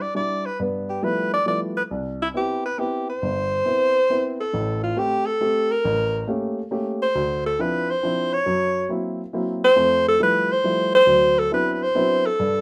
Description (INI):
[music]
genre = jazz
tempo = 137 BPM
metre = 3/4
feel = swing 67% on 8ths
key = C major, A minor from 4.5 s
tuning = A4 = 438 Hz
[part]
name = breathy alto saxophone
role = melody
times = 0.0-12.6 s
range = E4 to D5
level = -22 LUFS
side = equal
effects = none
[part]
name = warm upright piano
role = accompaniment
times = 0.0-12.6 s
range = G1 to G4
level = -28 LUFS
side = equal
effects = none
[sound]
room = moderate studio reverb, RT60 0.7 s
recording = none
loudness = -22 LUFS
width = mono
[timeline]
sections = 0.0-4.5 A section; 4.5-12.6 B section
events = none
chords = 0.0 Em7; 0.6 G13; 1.9 Cmaj7; 4.5 Am7; 5.8 A7b9; 7.1 Dm9; 8.5 F#7#11; 9.8 Fmaj9; 11.1 D13